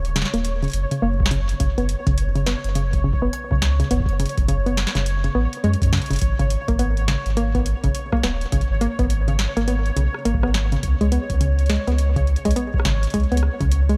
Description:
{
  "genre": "IDM",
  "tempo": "104 BPM",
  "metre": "4/4",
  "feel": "swing 62% on 16ths",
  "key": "unclear",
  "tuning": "A4 = 440 Hz",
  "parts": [
    { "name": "warm sub bass", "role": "bass", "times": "0.0-14.0 s", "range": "Eb1 to Gb2", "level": "-23 LUFS", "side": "equal", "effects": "none" },
    { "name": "booming analog drum machine", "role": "drums", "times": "0.0-14.0 s", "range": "hi-hat, rim click, snare drum", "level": "-31 LUFS", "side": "equal", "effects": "delay" },
    { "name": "pulsing gated texture", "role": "texture", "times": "0.0-14.0 s", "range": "Db5", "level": "-34 LUFS", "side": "equal", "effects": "chorus, built-in reverb" },
    { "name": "soft round pluck", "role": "arpeggios", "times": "0.2-13.9 s", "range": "Db3 to Cb4", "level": "-27 LUFS", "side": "equal", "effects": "chorus, delay" },
    { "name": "electronic kick drum", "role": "drums", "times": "1.2-13.7 s", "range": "none", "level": "-26 LUFS", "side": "equal", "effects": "none" }
  ],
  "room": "light reverb",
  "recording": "none",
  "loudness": "-21 LUFS",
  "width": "mono",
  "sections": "0.0-14.0 A section",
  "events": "none",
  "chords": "0.0 Ebm7; 1.3 Gb5; 6.2 Abm; 10.8 Db7(no3)"
}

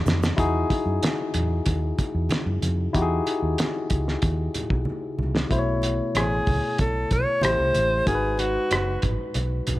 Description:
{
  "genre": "lush 1970s-style soul",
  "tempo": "94 BPM",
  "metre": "4/4",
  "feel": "straight",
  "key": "unclear",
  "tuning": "A4 = 444 Hz",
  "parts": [
    { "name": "barky tine electric piano", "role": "accompaniment", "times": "0.0-9.8 s", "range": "B2 to C#5", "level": "-27 LUFS", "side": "left 3 dB", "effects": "overdrive" },
    { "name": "vintage muted fingered electric bass", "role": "bass", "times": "0.0-9.8 s", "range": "F#1 to F#2", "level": "-26 LUFS", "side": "equal", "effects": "none" },
    { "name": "cloth-damped thuddy drum kit", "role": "drums", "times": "0.1-9.8 s", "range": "hi-hat, kick drum, rim click, snare drum", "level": "-26 LUFS", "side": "equal", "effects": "none" },
    { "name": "congas", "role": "percussion", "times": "0.1-9.8 s", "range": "none", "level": "-35 LUFS", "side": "right 2 dB", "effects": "none" },
    { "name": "clear alto saxophone", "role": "melody", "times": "6.2-9.0 s", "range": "F#4 to C#5", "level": "-24 LUFS", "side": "equal", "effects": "none" }
  ],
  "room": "small room ambience",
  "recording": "none",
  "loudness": "-21 LUFS",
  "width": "side -17 dB against mid",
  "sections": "0.4-5.5 A section; 5.5-9.8 B section",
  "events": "drum fill 0.0-0.4, 4.9-5.5",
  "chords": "0.4 Emaj9; 5.5 B9sus4; 7.4 Am7; 8.1 G#m7"
}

